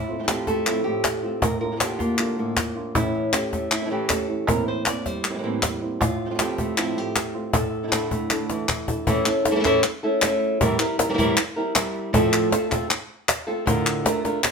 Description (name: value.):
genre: flamenco.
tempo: 157 BPM.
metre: 4/4.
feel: straight.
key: unclear.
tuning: A4 = 437 Hz.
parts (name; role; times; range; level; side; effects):
flamenco guitar; melody; 0.0-14.5 s; A2 to D5; -23 LUFS; equal; none.
flamenco guitar; stabs; 0.1-9.1 s; A2 to F4; -30 LUFS; right 2 dB; none.
cajon; percussion; 0.3-14.5 s; none; -26 LUFS; left 2 dB; none.
palmas hand claps; percussion; 0.3-14.5 s; none; -24 LUFS; left 2 dB; none.
room: moderate studio reverb, RT60 0.8 s.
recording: minimal, uncompressed stereo recording.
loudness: -20 LUFS.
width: side -5 dB against mid.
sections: 0.0-9.1 A section; 9.1-14.5 B section.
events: drum fill 8.3-9.1, 14.2.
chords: 0.0 F/A; 1.4 Bb/A; 3.0 A; 4.5 C7/A; 6.0 F/A; 7.5 Asus4; 9.1 A; 10.6 C7/A; 12.1 F/A; 13.7 Bb/A.